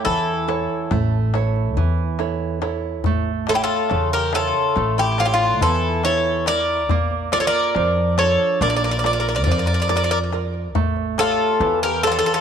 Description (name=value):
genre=greek folk, Greek bouzouki band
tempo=140 BPM (eighths)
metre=9/8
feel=straight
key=unclear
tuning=A4 = 440 Hz
part: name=Greek bouzouki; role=melody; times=0.0-12.4 s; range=F4 to D5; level=-20 LUFS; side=equal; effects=slapback echo
part: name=Greek bouzouki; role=second line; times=0.0-12.4 s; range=D4 to Bb4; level=-25 LUFS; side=left 10 dB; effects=none
part: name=nylon-string guitar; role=accompaniment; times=0.0-12.4 s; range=C#3 to E5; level=-25 LUFS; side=right 11 dB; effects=none
part: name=upright bass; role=bass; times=0.1-12.2 s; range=A1 to F2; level=-24 LUFS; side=equal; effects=none
part: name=darbuka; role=percussion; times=0.1-12.2 s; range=none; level=-25 LUFS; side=left 3 dB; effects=none
room=moderate echo chamber reverb, RT60 2.3 s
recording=1960s-style stereo with parts hard left and right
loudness=-17 LUFS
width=side -8 dB against mid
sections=0.0-12.4 A section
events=none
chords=0.0 A; 6.9 Bb; 10.7 A7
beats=0.05 0.48 0.91 1.34 1.76 2.19 2.62 | 3.05 3.47 3.90 4.33 4.76 5.18 5.61 6.04 6.47 | 6.90 7.32 7.75 8.18 8.61 9.04 9.46 9.89 10.32 | 10.75 11.18 11.61 12.04